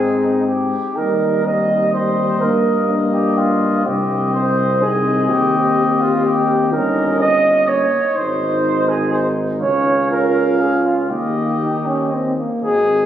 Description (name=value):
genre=classical, brass quintet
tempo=124 BPM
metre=3/4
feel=rubato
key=Eb major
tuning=A4 = 439 Hz
part: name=mellow trumpet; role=melody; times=0.0-13.1 s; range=Ab4 to F5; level=-22 LUFS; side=left 3 dB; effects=none
part: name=warm flugelhorn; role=second line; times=0.0-13.1 s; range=Eb4 to Eb5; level=-19 LUFS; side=right 3 dB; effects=none
part: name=clear trombone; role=accompaniment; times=0.0-12.6 s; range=G3 to Eb4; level=-22 LUFS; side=equal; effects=none
part: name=mellow French horn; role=accompaniment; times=0.0-13.1 s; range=Bb3 to G4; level=-23 LUFS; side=left 3 dB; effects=none
part: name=mellow tuba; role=bass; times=0.0-13.1 s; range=G1 to Ab2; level=-22 LUFS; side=equal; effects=none
room=moderate concert hall reverb, RT60 2.4 s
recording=recorded on a phone in the room, studio reverb, compression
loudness=-14 LUFS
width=side -10 dB against mid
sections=1.0-12.6 A section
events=none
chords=0.0 Ab; 1.0 Eb; 2.4 Eb/G; 3.9 Cm; 5.3 Cm/Eb; 6.7 Eb7/G; 8.2 Ab; 9.6 Db; 11.1 Eb